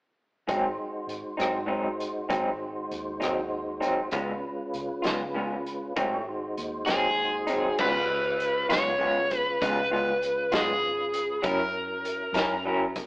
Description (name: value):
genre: slow blues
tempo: 66 BPM (dotted quarters)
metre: 12/8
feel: straight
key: Db mixolydian from 7.8 s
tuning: A4 = 440 Hz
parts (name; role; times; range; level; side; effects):
- electric guitar through a small old amp; accompaniment; 0.5-12.8 s; Ab2 to Bb4; -28 LUFS; equal; tremolo
- mellow tonewheel organ; sustained chords; 0.5-13.1 s; Gb3 to Db5; -34 LUFS; equal; slow rotary speaker, chorus vibrato
- vintage muted fingered electric bass; bass; 0.5-13.1 s; Ab1 to Db3; -46 LUFS; equal; none
- vintage drum kit; drums; 0.5-13.1 s; crash cymbal, hi-hat, kick drum, rim click, snare drum; -32 LUFS; equal; none
- overdriven slide guitar; melody; 6.9-12.6 s; Ab4 to Db5; -26 LUFS; equal; none
room: moderate stone room reverb, RT60 1.3 s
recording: rough rehearsal-room recording, AM radio sound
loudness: -25 LUFS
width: side -25 dB against mid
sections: 0.5-7.8 A section; 7.8-13.1 B section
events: none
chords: 0.5 Ab7; 4.1 Db7; 6.0 Ab7; 7.8 Db7; 11.4 Gb7